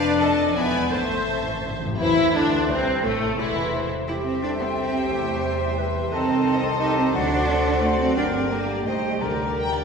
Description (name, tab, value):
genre	classical, dramatic, fast romantic movement for symphony orchestra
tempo	175 BPM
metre	3/4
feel	straight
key	A minor, G minor from 6.1 s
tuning	A4 = 441 Hz
part	warm symphonic violin section	melody	0.0-9.8 s	A3 to A5	-31 LUFS	left 2 dB	none
part	rich symphonic violin section	second line	0.0-9.8 s	A3 to F5	-32 LUFS	left 2 dB	none
part	rich symphonic viola section	accompaniment	0.0-9.8 s	E3 to C5	-30 LUFS	equal	none
part	mellow French horn section	sustained chords	0.0-9.8 s	E3 to Eb5	-28 LUFS	left 2 dB	none
part	concert harp	arpeggios	0.0-9.8 s	E2 to C6	-32 LUFS	left 4 dB	none
part	rich symphonic double bass section	bass	0.0-9.8 s	E1 to E2	-31 LUFS	right 2 dB	none
part	warm symphonic cello section	bass	0.0-9.8 s	E2 to E4	-27 LUFS	right 3 dB	none
part	timpani	percussion	0.9-2.0, 7.1-9.7 s	A2 to D3	-34 LUFS	equal	none
part	hollow concert flute	second line	2.0-9.8 s	C4 to Bb5	-29 LUFS	left 1 dB	none
part	warm clarinet	second line	2.0-9.8 s	F#4 to C5	-31 LUFS	equal	none
part	mellow bassoon	accompaniment	2.0-9.8 s	E2 to E3	-31 LUFS	right 1 dB	none
room	wet recital hall reverb, RT60 1.4 s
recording	recorded in a church or concert hall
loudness	-20 LUFS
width	side -5 dB against mid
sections	0.0-2.0 A section; 2.0-9.8 B section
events	timpani fill 0.9-2.0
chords	0.2 F7; 0.6 E7; 0.9 Am; 4.1 C; 5.1 C/E; 6.1 Adim/C; 7.1 D7; 8.2 Gm; 8.9 Cm; 9.2 Gm/D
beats	0.21 0.57 | 0.93 1.29 1.65 | 2.01 2.36 2.70 | 3.05 3.39 3.73 | 4.08 4.42 4.76 | 5.10 5.44 5.79 | 6.12 6.46 6.80 | 7.14 7.49 7.83 | 8.17 8.51 8.86 | 9.22 9.58